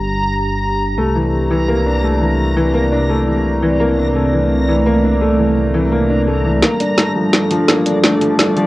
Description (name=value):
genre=half-time drum and bass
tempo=170 BPM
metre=4/4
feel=swing 56% on 16ths, half-time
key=G dorian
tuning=A4 = 439 Hz
part: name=dark analog pad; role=sustained chords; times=0.0-8.7 s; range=G3 to D5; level=-18 LUFS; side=right 1 dB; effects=chorus, cassette tape
part: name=dark detuned saw bass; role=bass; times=0.0-6.6 s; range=G1 to C2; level=-19 LUFS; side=equal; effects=none
part: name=backwards swelling texture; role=texture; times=0.0-8.7 s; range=D5 to Bb5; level=-25 LUFS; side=equal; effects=built-in reverb, cassette tape
part: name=felt-muted upright piano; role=arpeggios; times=1.0-8.7 s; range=E3 to D4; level=-17 LUFS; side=left 1 dB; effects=low-pass filter, cassette tape, tape echo
part: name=drum and bass drum kit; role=drums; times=6.6-8.6 s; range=hi-hat, snare drum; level=-15 LUFS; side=equal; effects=cassette tape
room=light reverb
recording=home recording on cassette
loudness=-13 LUFS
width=side -18 dB against mid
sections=0.0-6.6 A section; 6.6-8.7 B section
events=filter sweep on analog synth pad 0.0-6.6; build-up 6.6-8.7; drum fill 6.6-8.7; filter sweep on felt piano 6.6-8.7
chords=0.0 Gm; 1.0 C; 6.6 Gm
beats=0.27 0.62 | 0.98 1.33 1.68 2.04 | 2.39 2.74 3.10 3.45 | 3.80 4.16 4.51 4.86 | 5.21 5.57 5.92 6.27 | 6.62 6.98 7.33 7.68 | 8.04 8.39